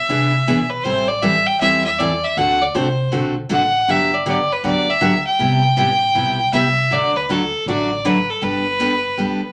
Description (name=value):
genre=country, western swing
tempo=158 BPM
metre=4/4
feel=swing 64% on 8ths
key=G major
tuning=A4 = 440 Hz
part: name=clear fiddle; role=melody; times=0.0-9.5 s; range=A4 to G5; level=-20 LUFS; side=equal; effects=none
part: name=picked steel-string acoustic guitar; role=accompaniment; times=0.1-9.4 s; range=C3 to A4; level=-23 LUFS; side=equal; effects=none
part: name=upright bass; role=bass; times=0.1-9.5 s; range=G1 to E2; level=-28 LUFS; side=equal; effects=none
room=wet club reverb, RT60 0.6 s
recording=none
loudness=-18 LUFS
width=mono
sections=0.0-9.5 A section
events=none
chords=0.0 E7; 0.9 Am7; 2.4 D7; 3.9 Gmaj7; 5.4 Cmaj7; 6.9 D; 8.4 Gadd9